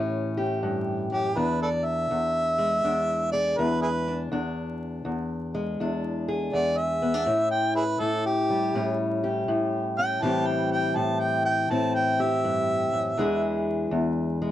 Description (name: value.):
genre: acoustic country blues, solo or duo.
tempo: 81 BPM.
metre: 4/4.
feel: swing 66% on 8ths.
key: unclear.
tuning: A4 = 436 Hz.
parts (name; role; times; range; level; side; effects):
mellow harmonica; melody; 0.0-13.6 s; E4 to A5; -25 LUFS; right 1 dB; none.
fingerpicked steel-string acoustic guitar; accompaniment; 0.0-14.5 s; E2 to G#4; -26 LUFS; left 1 dB; none.
room: light reverb.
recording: dark, warm production, vinyl crackle.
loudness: -23 LUFS.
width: side -12 dB against mid.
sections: 0.0-14.5 A section.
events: none.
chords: 0.0 A7; 1.4 E7; 7.3 A7; 10.2 Am7; 13.2 E7.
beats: 0.62 | 1.36 2.10 2.83 3.57 | 4.31 5.04 5.78 6.52 | 7.26 8.00 8.74 9.48 | 10.22 10.96 11.70 12.44 | 13.18 13.92.